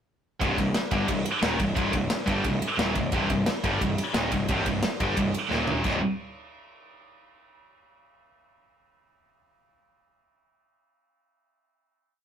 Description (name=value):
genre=heavy metal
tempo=177 BPM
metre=4/4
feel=straight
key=C minor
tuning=A4 = 440 Hz
part: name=high-gain distorted guitar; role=riff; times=0.4-6.0 s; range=C2 to G3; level=-26 LUFS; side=equal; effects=distortion
part: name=fuzz picked electric bass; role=bass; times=0.4-6.0 s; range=C1 to G1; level=-31 LUFS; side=equal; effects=overdrive
part: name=modern studio drum kit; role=drums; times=0.4-5.9 s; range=crash cymbal, kick drum, ride cymbal, snare drum, toms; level=-29 LUFS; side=equal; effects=none
room=light reverb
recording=rough rehearsal-room recording, tube saturation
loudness=-23 LUFS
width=side -8 dB against mid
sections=0.4-5.8 riff; 5.8-7.2 final chord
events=drum fill 5.5-5.8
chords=0.4 Cm; 5.5 Eb5; 5.8 C5